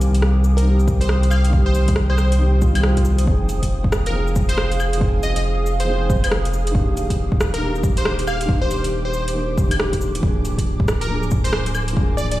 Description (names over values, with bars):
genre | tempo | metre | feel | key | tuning
future garage | 138 BPM | 4/4 | swing 62% on 16ths | F dorian | A4 = 440 Hz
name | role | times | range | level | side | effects
felt-muted upright piano | accompaniment | 0.0-12.4 s | Eb3 to Ab4 | -25 LUFS | left 1 dB | vintage 12-bit sampler grit, sidechain pumping, tape echo
ethereal airy pad | sustained chords | 0.0-12.4 s | G4 to Eb6 | -29 LUFS | right 1 dB | ensemble chorus, built-in reverb, sidechain pumping
soft dub sub bass | bass | 0.0-12.4 s | D1 to C2 | -20 LUFS | equal | sidechain pumping
deep house drum kit | drums | 0.0-12.4 s | cabasa, claves, hi-hat, rim click | -26 LUFS | equal | overdrive, studio reverb
flickering grainy texture | texture | 0.0-3.3 s | F5 | -45 LUFS | right 2 dB | none
plucky unison lead | melody | 0.6-12.4 s | Bb4 to F5 | -28 LUFS | right 1 dB | phaser, cassette tape, tape echo
electronic kick drum | drums | 0.9-12.1 s | none | -20 LUFS | equal | overdrive, studio reverb
swell | sound effects | 2.6-3.3 s | none | -33 LUFS | right 6 dB | none
room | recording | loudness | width
light reverb | played on a big sound system in a bare room, large studio reverb, vinyl crackle | -16 LUFS | side -16 dB against mid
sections
0.0-3.3 A section; 3.3-12.4 B section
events
swell 2.6-3.3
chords
0.0 Cm; 3.3 Fm7; 6.8 Ebmaj7; 10.2 Bb7/D